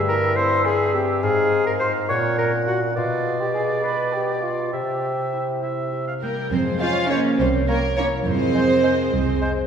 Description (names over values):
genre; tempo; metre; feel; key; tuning
cinematic; 69 BPM (dotted quarters); 6/8; straight; F minor; A4 = 441 Hz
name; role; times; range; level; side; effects
bright oboe; second line; 0.0-9.5 s; C5 to G5; -29 LUFS; right 3 dB; none
warm bassoon; accompaniment; 0.0-9.5 s; G2 to Bb3; -27 LUFS; right 3 dB; none
concert harp; arpeggios; 0.0-9.7 s; F2 to Db5; -28 LUFS; left 5 dB; none
clear clarinet; second line; 0.1-9.4 s; F4 to F5; -25 LUFS; left 1 dB; none
mellow baroque flute; second line; 0.1-9.4 s; Bb4 to Db6; -29 LUFS; equal; none
rich chamber violin section; melody; 6.2-9.4 s; Bb4 to F5; -30 LUFS; left 2 dB; none
warm chamber violin section; second line; 6.2-9.4 s; Bb4 to F5; -29 LUFS; right 2 dB; none
rich chamber viola section; accompaniment; 6.2-9.4 s; G3 to Db4; -29 LUFS; equal; none
dark chamber cello section; bass; 6.2-9.4 s; Bb3 to F4; -23 LUFS; right 3 dB; none
dark French horn section; sustained chords; 6.5-9.7 s; Ab4 to Db5; -29 LUFS; left 1 dB; none
warm chamber double bass section; bass; 6.5-9.7 s; C2 to F2; -25 LUFS; right 3 dB; none
room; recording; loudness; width
wet scoring stage reverb, RT60 1.8 s; heard from further back in the room; -19 LUFS; side -7 dB against mid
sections
0.0-6.5 A section; 6.5-9.7 B section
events
none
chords
0.0 C7/G; 1.2 Fm/Ab; 2.1 Gb/Bb; 3.0 Bdim7; 4.7 C; 6.5 Fm; 7.4 C7b9; 8.3 Fm